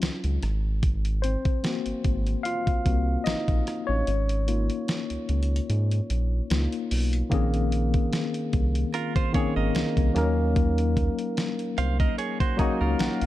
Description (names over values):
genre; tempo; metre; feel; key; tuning
contemporary R&B; 74 BPM; 4/4; swing 54% on 16ths; Bb minor; A4 = 442 Hz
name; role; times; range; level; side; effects
mellow tine electric piano; accompaniment; 0.0-13.3 s; Eb3 to Bb5; -28 LUFS; left 3 dB; medium stereo tremolo
round analog bass; bass; 0.0-13.3 s; Ab1 to Ab2; -25 LUFS; equal; none
dusty soul sampler-style drum kit; drums; 0.0-13.3 s; hi-hat, kick drum, rim click, snare drum; -27 LUFS; equal; none
direct-recorded clean electric guitar; arpeggios; 8.9-13.3 s; Eb4 to F5; -31 LUFS; right 8 dB; none
room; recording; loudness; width
little or no reverb; dark, warm production; -23 LUFS; side -15 dB against mid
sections
0.0-7.3 A section; 7.3-13.3 B section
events
tine electric piano solo 0.0-7.3; kick muted 4.1-7.3; tine electric piano fill 12.2-13.3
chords
0.4 Ab7; 4.1 Db6/Ab; 7.3 Bbm11; 10.2 Ebm7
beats
0.02 | 0.83 1.64 2.45 3.27 | 4.08 4.89 5.70 6.51 | 7.32 8.13 8.94 9.75 | 10.56 11.37 12.18 12.99